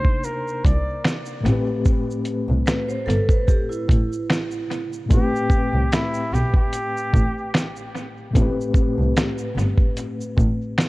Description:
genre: lo-fi hip hop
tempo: 74 BPM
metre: 4/4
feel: swing 55% on 16ths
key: A minor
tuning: A4 = 443 Hz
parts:
  - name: clear flugelhorn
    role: melody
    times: 0.0-7.9 s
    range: E4 to D5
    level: -27 LUFS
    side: equal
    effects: analog delay
  - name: mellow reed electric piano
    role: accompaniment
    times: 0.0-10.9 s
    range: A2 to C5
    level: -26 LUFS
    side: left 2 dB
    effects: fast tremolo, cassette tape, analog delay
  - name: lo-fi sampler-style drum kit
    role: drums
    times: 0.0-10.9 s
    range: finger snaps, hi-hat, kick drum, shaker, snare drum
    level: -20 LUFS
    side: equal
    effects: analog delay
  - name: warm double bass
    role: bass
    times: 0.6-10.5 s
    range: G1 to C2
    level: -22 LUFS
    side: equal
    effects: none
  - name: vibraphone with hard mallets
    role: second line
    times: 2.7-4.9 s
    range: E4 to C5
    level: -27 LUFS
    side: right 2 dB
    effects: analog delay
room: small room ambience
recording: echo-heavy mix, cassette tape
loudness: -19 LUFS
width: side -20 dB against mid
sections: 0.0-5.1 A section; 5.1-10.9 B section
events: none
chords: 0.0 Cm9; 1.5 Am9

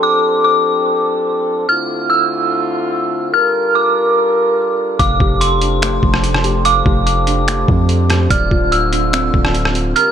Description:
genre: hip hop, atmospheric cloud-rap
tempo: 145 BPM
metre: 4/4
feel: half-time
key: D minor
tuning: A4 = 440 Hz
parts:
  - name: dark detuned synth bell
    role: melody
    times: 0.0-10.1 s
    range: C6 to F6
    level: -16 LUFS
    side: right 1 dB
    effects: chorus, phaser, tape echo
  - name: dark brass ensemble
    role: sustained chords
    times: 0.0-10.1 s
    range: D3 to Bb4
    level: -18 LUFS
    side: equal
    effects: sidechain pumping
  - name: muted felt-like synth keys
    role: arpeggios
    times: 5.0-10.1 s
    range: D3 to Bb5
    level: -21 LUFS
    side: right 3 dB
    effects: chorus, tape echo
  - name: long sustained 808-style bass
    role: bass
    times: 5.0-9.9 s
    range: D1 to F2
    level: -17 LUFS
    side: equal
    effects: none
  - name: trip hop sampler-style drum kit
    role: drums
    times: 5.0-10.1 s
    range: finger snaps, hi-hat, kick drum, rim click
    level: -17 LUFS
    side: equal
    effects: none
room: light reverb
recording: none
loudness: -12 LUFS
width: side -8 dB against mid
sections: 0.0-10.1 A section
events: none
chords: 0.0 F69; 1.7 Dm9; 3.3 Gm7; 5.0 F69; 8.3 Dm9

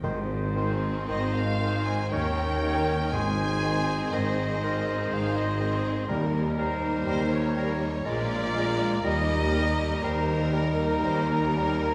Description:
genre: classical, slow romantic movement for symphony orchestra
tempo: 60 BPM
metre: 3/4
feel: uneven beats, rubato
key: Ab major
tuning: A4 = 438 Hz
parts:
  - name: clear oboe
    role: second line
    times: 0.0-11.8 s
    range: Bb4 to Db5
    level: -43 LUFS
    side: equal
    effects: none
  - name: warm bassoon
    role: accompaniment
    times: 0.0-11.7 s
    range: Eb3 to Ab3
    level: -40 LUFS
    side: equal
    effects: none
  - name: warm French horn section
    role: sustained chords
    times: 0.0-11.9 s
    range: G3 to F4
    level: -36 LUFS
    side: equal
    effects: none
  - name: warm trumpet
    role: stabs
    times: 0.0-11.9 s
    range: Bb4 to Db5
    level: -37 LUFS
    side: equal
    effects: none
  - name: clear studio cello section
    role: bass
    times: 0.0-11.9 s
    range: Eb2 to Bb2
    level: -35 LUFS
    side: equal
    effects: none
  - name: mellow tuba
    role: bass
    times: 0.0-11.9 s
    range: Ab1 to Eb2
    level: -36 LUFS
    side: equal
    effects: none
  - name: rich studio double bass section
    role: bass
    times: 0.0-11.9 s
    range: Ab1 to Eb2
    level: -36 LUFS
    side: equal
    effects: none
  - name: timpani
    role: percussion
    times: 0.0-7.5 s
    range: Ab2 to Eb3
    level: -39 LUFS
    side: equal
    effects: none
  - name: clear studio violin section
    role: second line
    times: 0.6-11.9 s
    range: Eb4 to Bb4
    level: -40 LUFS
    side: equal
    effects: none
  - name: rich studio viola section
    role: accompaniment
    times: 0.6-11.9 s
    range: Eb3 to Db4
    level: -37 LUFS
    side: equal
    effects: none
  - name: rich studio violin section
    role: melody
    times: 1.1-11.9 s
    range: Bb4 to Ab5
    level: -37 LUFS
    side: equal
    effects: none
  - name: bright clarinet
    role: second line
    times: 1.1-11.9 s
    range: G4 to C5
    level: -39 LUFS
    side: equal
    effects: none
  - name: concert flute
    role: second line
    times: 1.1-11.9 s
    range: Bb4 to Ab5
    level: -37 LUFS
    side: equal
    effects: none
room: wet concert hall reverb, RT60 2.4 s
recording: none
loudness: -27 LUFS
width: mono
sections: 0.0-11.9 A section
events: none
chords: 0.0 Ab; 2.1 Eb7; 3.1 Ab; 6.1 Eb; 8.1 Bb7; 9.0 Eb

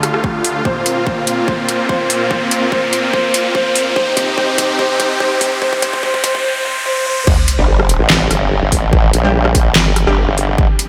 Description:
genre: heavy wobble dubstep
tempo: 145 BPM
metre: 4/4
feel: half-time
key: G minor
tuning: A4 = 440 Hz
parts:
  - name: supersaw chords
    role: sustained chords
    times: 0.0-6.4 s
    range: D2 to G4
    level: -22 LUFS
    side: equal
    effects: sidechain pumping
  - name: dubstep drum kit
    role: drums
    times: 0.0-10.9 s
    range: crash cymbal, handclaps, hi-hat, rim click, snare drum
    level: -20 LUFS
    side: equal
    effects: overdrive, high-pass filter on hats, high-pass filter on snare, high-pass filter on cymbals, high-pass filter on room
  - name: riser and sub drop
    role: sound effects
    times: 0.0-8.9 s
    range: none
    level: -23 LUFS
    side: equal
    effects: none
  - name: electronic kick drum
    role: drums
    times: 0.2-10.7 s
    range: none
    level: -20 LUFS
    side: equal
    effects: overdrive
  - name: warm concert grand piano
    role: melody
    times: 0.7-7.3 s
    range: C5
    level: -22 LUFS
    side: equal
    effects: diffuse ambient delay
  - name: formant-sweep wobble bass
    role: bass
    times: 7.3-10.7 s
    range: G1 to Bb1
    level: -17 LUFS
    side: equal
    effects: chorus, overdrive
  - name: orchestra-hit-like synth stab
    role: stabs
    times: 7.6-10.2 s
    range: G3 to G4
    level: -25 LUFS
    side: equal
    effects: none
  - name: formant-sweep wobble bass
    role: bass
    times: 7.6-10.3 s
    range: G1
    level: -16 LUFS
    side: equal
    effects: chorus, overdrive
room: wet cathedral reverb, RT60 5.7 s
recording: dreamy mix soaked in reverb, high-pass filter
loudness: -15 LUFS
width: mono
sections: 0.0-7.3 A section; 7.3-10.9 B section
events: build-up 0.0-7.3; riser 0.0-7.3; drum fill 0.7-6.4; drop 7.3-10.9; impact 7.3-8.9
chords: 0.0 Dm; 0.7 Bbsus2; 4.0 Cm; 7.3 Gmadd9

